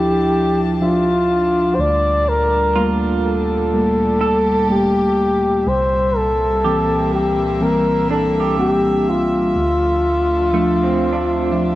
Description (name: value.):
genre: acoustic folk-pop ballad.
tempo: 62 BPM.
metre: 4/4.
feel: straight.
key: D minor.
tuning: A4 = 442 Hz.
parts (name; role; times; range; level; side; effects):
breathy flugelhorn; melody; 0.0-11.8 s; F4 to D5; -17 LUFS; left 1 dB; tape echo.
bright tine electric piano; accompaniment; 0.0-11.8 s; C2 to E5; -19 LUFS; equal; none.
warm chamber string section; sustained chords; 0.0-11.8 s; Bb2 to A5; -26 LUFS; equal; none.
electric guitar through a small old amp; arpeggios; 0.0-11.8 s; A3 to A4; -24 LUFS; right 7 dB; tremolo.
room: moderate spring reverb, RT60 2.5 s.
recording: none.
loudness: -14 LUFS.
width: side -15 dB against mid.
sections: 0.0-11.8 A section.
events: none.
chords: 0.0 Dmadd9; 1.8 Gmadd9/D; 5.7 C7; 9.6 Dmadd9.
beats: 0.81 | 1.78 2.75 3.73 4.70 | 5.67 6.64 7.61 8.58 | 9.56 10.54 11.52.